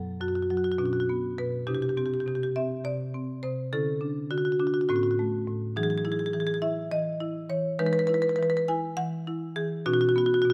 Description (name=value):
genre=classical, contemporary piece for solo marimba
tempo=205 BPM (eighths)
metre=7/8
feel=rubato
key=unclear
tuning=A4 = 437 Hz
part: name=marimba with medium hard mallets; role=solo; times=0.0-10.5 s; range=F#2 to G#5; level=-28 LUFS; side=equal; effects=none
room=light reverb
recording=close, detailed microphones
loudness=-28 LUFS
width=mono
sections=0.0-10.5 A section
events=none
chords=0.0 F#7sus4; 0.8 Bmadd9; 1.7 Cadd9; 3.7 Dmaj9; 4.9 Aadd9; 5.8 Emaj9; 7.8 G#m7/E; 9.9 Badd9